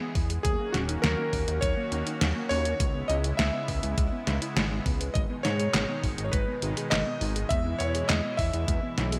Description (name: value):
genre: synthwave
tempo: 102 BPM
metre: 4/4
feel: straight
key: G# minor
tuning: A4 = 440 Hz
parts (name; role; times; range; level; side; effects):
- warm electric grand piano; melody; 0.0-9.2 s; F#4 to E5; -35 LUFS; equal; delay
- FM electric piano with soft pad layer; second line; 0.0-9.2 s; F#4 to E5; -43 LUFS; equal; none
- warm analog pad; sustained chords; 0.0-9.2 s; B2 to G#4; -39 LUFS; equal; chorus, tremolo, sidechain pumping
- soft round pluck; arpeggios; 0.0-9.2 s; F#3 to B4; -39 LUFS; equal; chorus, cassette tape, delay
- chorused synth bass; bass; 0.2-9.2 s; D#1 to G#2; -33 LUFS; equal; sidechain pumping
- detuned 8-bit digital drum machine; drums; 0.2-9.2 s; handclaps, hi-hat, snare drum; -33 LUFS; equal; none
- electronic kick drum; drums; 0.2-8.8 s; none; -31 LUFS; equal; none
room: light reverb, digital ambience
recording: bright 1980s-style digital production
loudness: -28 LUFS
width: mono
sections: 0.0-9.2 A section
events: none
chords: 0.4 D#m7; 2.8 C#m7; 5.2 G#m; 7.5 E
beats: | 0.45 1.04 1.62 2.21 | 2.80 3.39 3.98 4.57 | 5.15 5.74 6.33 6.92 | 7.51 8.10 8.68